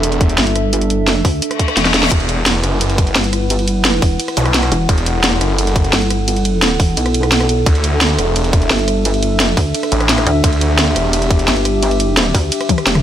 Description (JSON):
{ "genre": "dark technical drum and bass", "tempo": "173 BPM", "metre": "4/4", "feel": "straight", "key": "unclear", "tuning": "A4 = 441 Hz", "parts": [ { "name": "dark analog pad", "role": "sustained chords", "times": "0.0-13.0 s", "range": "D4 to F#5", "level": "-20 LUFS", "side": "right 1 dB", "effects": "chorus, sidechain pumping" }, { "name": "snarling distorted saw bass", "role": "bass", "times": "0.0-11.5 s", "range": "E1 to D2", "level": "-16 LUFS", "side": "equal", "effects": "distortion, overdrive" }, { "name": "drum and bass drum kit", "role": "drums", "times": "0.0-13.0 s", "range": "hi-hat, ride cymbal, rim click, snare drum, toms", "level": "-17 LUFS", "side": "equal", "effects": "none" }, { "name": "electronic kick drum", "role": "drums", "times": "0.2-12.8 s", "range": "none", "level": "-15 LUFS", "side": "equal", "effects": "overdrive" }, { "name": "pulsing pluck wobble bass", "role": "bass", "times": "0.4-13.0 s", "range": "E1 to D2", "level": "-17 LUFS", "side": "equal", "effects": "chorus" }, { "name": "reverse cymbal and zap", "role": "sound effects", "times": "1.5-2.1, 4.4-4.5 s", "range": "none", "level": "-21 LUFS", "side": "left 4 dB", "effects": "none" } ], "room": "light reverb", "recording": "none", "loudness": "-12 LUFS", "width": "side -10 dB against mid", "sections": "0.0-13.0 A section", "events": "reverse cymbal 1.5-2.1; drum fill 1.8-2.1, 12.7-13.0", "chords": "0.0 Dsus4; 2.1 Emadd9; 7.7 Dsus4", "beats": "0.03 0.38 | 0.73 1.07 1.42 1.77 | 2.12 2.46 2.81 3.16 | 3.50 3.85 4.20 4.54 | 4.89 5.24 5.58 5.93 | 6.28 6.62 6.97 7.32 | 7.66 8.01 8.36 8.71 | 9.05 9.40 9.74 10.09 | 10.44 10.79 11.13 11.48 | 11.83 12.17 12.52 12.87" }